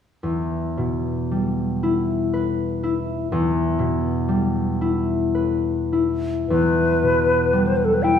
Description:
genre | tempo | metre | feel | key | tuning
classical, romantic duo for flute and harp | 49-63 BPM | 3/4 | rubato | E minor | A4 = 440 Hz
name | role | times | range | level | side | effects
concert harp | accompaniment | 0.2-8.2 s | E2 to B4 | -20 LUFS | left 2 dB | none
hollow concert flute | melody | 6.5-8.2 s | A4 to G5 | -18 LUFS | left 1 dB | none
room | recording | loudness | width
wet recital hall reverb, RT60 1.4 s | recorded in a church or concert hall | -19 LUFS | side -8 dB against mid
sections
0.2-6.5 A section; 6.5-8.2 B section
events
none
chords
0.2 Em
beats
| 0.23 1.31 2.34 | 3.32 4.29 5.34 | 6.49 7.53

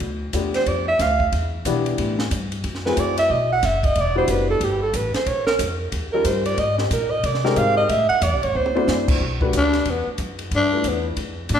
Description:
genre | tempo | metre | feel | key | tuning
jazz, small-group swing and bop | 183 BPM | 4/4 | swing 63% on 8ths | G major | A4 = 435 Hz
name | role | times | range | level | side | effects
upright bass | bass | 0.0-11.6 s | E1 to C3 | -25 LUFS | equal | none
compact cocktail drum kit | drums | 0.0-11.6 s | crash cymbal, hi-hat, kick drum, ride cymbal, snare drum, toms | -27 LUFS | equal | none
warm baby grand piano | accompaniment | 0.3-11.2 s | E3 to C5 | -25 LUFS | left 5 dB | none
breathy alto saxophone | second line | 0.6-9.2 s | G4 to F#5 | -20 LUFS | right 3 dB | none
growling tenor saxophone | melody | 9.6-11.6 s | B3 to D4 | -21 LUFS | left 2 dB | none
room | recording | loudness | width
wet recital hall reverb, RT60 1.5 s | recorded in a church or concert hall | -18 LUFS | side -8 dB against mid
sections
0.0-9.2 A section; 9.2-11.6 A section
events
alto saxophone solo 0.0-9.2; drum fill 8.5-8.9; tenor saxophone solo 9.2-11.6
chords
0.0 G7; 1.3 Em7; 2.6 F#m7b5; 3.3 B5; 4.0 Em7; 5.3 Bb5; 5.9 Eb7; 6.6 Abmaj7; 7.9 Am; 8.5 D7; 9.2 Gmaj7; 10.5 G13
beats
| 0.01 0.34 0.67 1.00 | 1.32 1.65 1.98 2.31 | 2.64 2.97 3.30 3.62 | 3.95 4.28 4.61 4.94 | 5.27 5.59 5.92 6.25 | 6.58 6.91 7.24 7.56 | 7.89 8.22 8.55 8.88 | 9.20 9.53 9.86 10.19 | 10.51 10.84 11.17 11.50

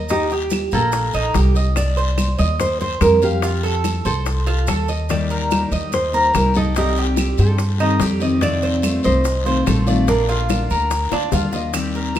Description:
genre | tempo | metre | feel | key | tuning
latin, Cuban son and guajira | 144 BPM | 4/4 | straight | Bb major | A4 = 440 Hz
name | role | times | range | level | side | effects
nylon-string guitar | melody | 0.0-10.9 s | G4 to D5 | -22 LUFS | right 1 dB | none
Cuban tres | arpeggios | 0.0-12.2 s | Bb3 to F5 | -23 LUFS | right 2 dB | none
upright bass | bass | 0.0-12.2 s | Bb1 to G2 | -20 LUFS | equal | none
bongos | percussion | 0.1-12.2 s | none | -29 LUFS | left 9 dB | none
congas | percussion | 0.1-12.2 s | none | -26 LUFS | equal | none
guiro | percussion | 0.1-12.2 s | none | -33 LUFS | left 7 dB | none
maracas | percussion | 0.1-12.2 s | none | -35 LUFS | right 5 dB | none
claves | percussion | 0.5-12.2 s | none | -33 LUFS | right 8 dB | none
picked steel-string acoustic guitar | accompaniment | 5.1-12.2 s | C3 to G4 | -23 LUFS | left 2 dB | none
room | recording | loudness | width
moderate large studio reverb, RT60 1.2 s | minimal, uncompressed stereo recording | -16 LUFS | side -11 dB against mid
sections
0.0-11.7 A section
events
drum fill 11.1-11.7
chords
0.1 Eb; 1.8 Cm; 3.4 F; 5.1 Eb; 6.8 Cm; 8.4 F7; 10.1 Bb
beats
| 0.10 0.52 0.93 1.35 | 1.77 2.18 2.60 3.02 | 3.43 3.85 4.27 4.68 | 5.10 5.51 5.93 6.34 | 6.76 7.18 7.59 8.01 | 8.42 8.84 9.25 9.67 | 10.09 10.50 10.91 11.33 | 11.75 12.16

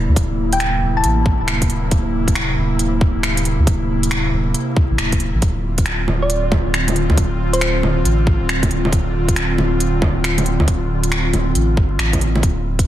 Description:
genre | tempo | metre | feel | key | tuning
future garage | 137 BPM | 4/4 | swing 64% on 16ths | D minor | A4 = 439 Hz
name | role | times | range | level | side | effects
airy breathy pad | sustained chords | 0.0-12.9 s | C3 to F4 | -22 LUFS | equal | chorus, sidechain pumping
soft dub sub bass | bass | 0.0-12.9 s | D1 to D2 | -19 LUFS | equal | sidechain pumping
electronic kick drum | drums | 0.2-12.9 s | none | -18 LUFS | equal | overdrive
organic electronic drum kit | drums | 0.2-12.9 s | bongos, finger snaps, hi-hat | -21 LUFS | right 1 dB | overdrive, soft clipping on snare
thumb-piano-like synth pluck | melody | 0.5-1.3, 6.2-8.0 s | C5 to A5 | -24 LUFS | equal | chorus, tape echo
room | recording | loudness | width
light reverb, digital ambience | dense, heavily limited modern master, vinyl crackle | -15 LUFS | side -12 dB against mid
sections
0.0-12.9 A section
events
none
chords
0.0 C7/D; 5.4 Dm7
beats
| 0.17 0.60 1.04 1.48 | 1.92 2.36 2.79 3.23 | 3.67 4.11 4.55 4.99 | 5.42 5.86 6.30 6.74 | 7.17 7.61 8.05 8.49 | 8.93 9.36 9.80 10.24 | 10.68 11.12 11.55 11.99 | 12.43 12.87

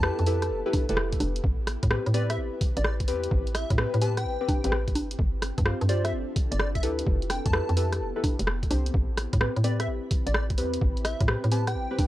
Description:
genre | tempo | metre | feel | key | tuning
UK garage, two-step garage | 128 BPM | 4/4 | swing 67% on 16ths | A minor | A4 = 439 Hz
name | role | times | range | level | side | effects
plucky unison lead | melody | 0.0-12.1 s | D5 to A5 | -35 LUFS | equal | none
ethereal airy pad | sustained chords | 0.0-12.1 s | B3 to B5 | -40 LUFS | equal | ensemble chorus, built-in reverb, sidechain pumping
deep mellow chord stab | stabs | 0.0-12.1 s | C4 to C5 | -31 LUFS | left 2 dB | chorus, tape echo
hollow knocking FM bass | bass | 0.0-11.9 s | F1 to A2 | -28 LUFS | equal | tube saturation, sidechain pumping
punchy analog drum machine | drums | 0.0-12.1 s | congas, hi-hat, rim click | -30 LUFS | equal | none
electronic kick drum | drums | 0.7-12.1 s | none | -26 LUFS | equal | overdrive
room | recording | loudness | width
little or no reverb | dry, gritty hardware recording, cassette tape | -24 LUFS | side -15 dB against mid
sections
0.0-12.1 A section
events
none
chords
0.0 Fmaj9#11; 1.4 Am9; 5.0 G7sus4; 7.1 Fmaj9#11; 8.9 Am9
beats
0.03 0.50 0.97 | 1.44 1.91 2.38 2.85 | 3.31 3.78 4.25 4.72 | 5.19 5.66 6.13 6.59 | 7.06 7.53 8.00 8.47 | 8.94 9.41 9.88 10.35 | 10.81 11.28 11.75

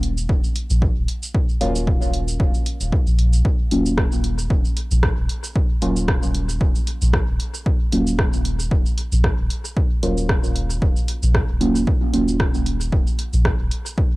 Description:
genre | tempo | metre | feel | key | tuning
dub techno | 114 BPM | 4/4 | swing 55% on 16ths | Eb minor | A4 = 441 Hz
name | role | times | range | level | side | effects
warm sub bass | bass | 0.0-13.7 s | Eb1 to Bb1 | -21 LUFS | equal | transformer saturation, sidechain pumping
punchy analog drum machine | drums | 0.0-14.0 s | hi-hat, rim click, shaker | -28 LUFS | equal | cassette tape, dub echo
electronic kick drum | drums | 0.3-14.1 s | none | -20 LUFS | equal | cassette tape
deep mellow chord stab | stabs | 1.6-12.5 s | Gb3 to F4 | -24 LUFS | right 1 dB | chorus, phaser, sidechain pumping, cassette tape, dub echo
room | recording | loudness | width
digital ambience | home recording on cassette | -17 LUFS | side -21 dB against mid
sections
0.0-14.2 A section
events
none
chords
0.0 Ebm7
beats
0.29 0.82 | 1.34 1.87 2.40 2.92 | 3.45 3.98 4.50 5.03 | 5.56 6.08 6.61 7.13 | 7.66 8.19 8.71 9.24 | 9.77 10.29 10.82 11.35 | 11.87 12.40 12.92 13.45 | 13.98

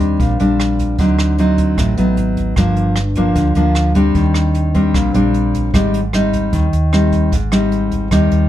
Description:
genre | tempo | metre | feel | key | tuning
bossa nova | 152 BPM | 4/4 | straight | unclear | A4 = 443 Hz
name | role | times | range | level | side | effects
nylon-string guitar | accompaniment | 0.0-8.5 s | G2 to Eb4 | -14 LUFS | left 1 dB | none
hollow-body short-scale fingered electric bass | bass | 0.0-8.5 s | G1 to Eb2 | -18 LUFS | equal | none
jazz brush drum kit | drums | 0.0-8.4 s | hi-hat, kick drum, rim click | -22 LUFS | equal | none
room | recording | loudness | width
little or no reverb | dark, warm production | -12 LUFS | side -12 dB against mid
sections
0.0-8.5 A section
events
none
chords
0.0 Eb6; 1.0 D7b9; 2.2 Abm7; 2.6 Gm7; 4.2 Eb6; 5.7 Abmaj7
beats
0.20 0.59 | 0.99 1.38 1.78 2.17 | 2.57 2.97 3.36 3.76 | 4.15 4.55 4.95 5.34 | 5.74 6.13 6.53 6.92 | 7.32 7.72 8.11

